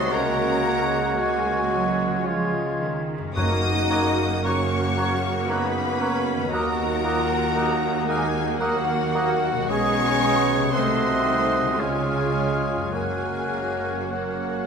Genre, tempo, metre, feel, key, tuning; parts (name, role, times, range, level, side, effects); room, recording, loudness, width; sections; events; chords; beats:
classical, slow romantic movement for symphony orchestra; 56 BPM; 3/4; uneven beats, rubato; F# major; A4 = 441 Hz
rich symphonic violin section; melody; 0.0-14.7 s; F#5 to D#6; -30 LUFS; left 4 dB
clear clarinet; second line; 0.0-14.7 s; E#4 to A#4; -34 LUFS; equal
concert flute; second line; 0.0-14.7 s; E#6 to A6; -34 LUFS; left 1 dB
rich symphonic violin section; second line; 0.0-14.7 s; F#4 to D#5; -33 LUFS; left 2 dB
warm oboe; second line; 0.0-14.7 s; C#5 to Eb5; -32 LUFS; right 2 dB
rich symphonic viola section; accompaniment; 0.0-14.7 s; F#3 to G#4; -30 LUFS; right 2 dB
warm bassoon; accompaniment; 0.0-14.7 s; Gb3 to C#4; -32 LUFS; right 2 dB
warm trombone section; sustained chords; 0.0-14.7 s; C#3 to A#3; -32 LUFS; right 4 dB
concert harp; arpeggios; 0.0-14.7 s; F#2 to Eb5; -34 LUFS; left 6 dB
mellow trumpet; stabs; 0.0-14.7 s; E#4 to G#4; -29 LUFS; left 1 dB
rich symphonic cello section; bass; 0.0-14.7 s; D#2 to G#3; -31 LUFS; right 4 dB
rich symphonic double bass section; bass; 0.0-14.7 s; F#1 to D#2; -32 LUFS; right 4 dB
dark French horn section; sustained chords; 0.1-14.7 s; F#3 to D#4; -31 LUFS; left 3 dB
timpani; percussion; 3.4-4.9 s; F#2; -28 LUFS; equal
wet scoring stage reverb, RT60 1.8 s; minimal, uncompressed stereo recording; -20 LUFS; side -6 dB against mid
0.0-14.7 A section
0.1 C#sus4; 2.2 C#; 3.4 F#; 6.5 D#m; 9.7 G#m/B; 10.7 Cdim7; 11.8 C#; 12.9 F#
| 0.12 1.19 2.25 | 3.36 4.44 5.49 | 6.52 7.55 8.60 | 9.70 10.74 11.78 | 12.92 14.11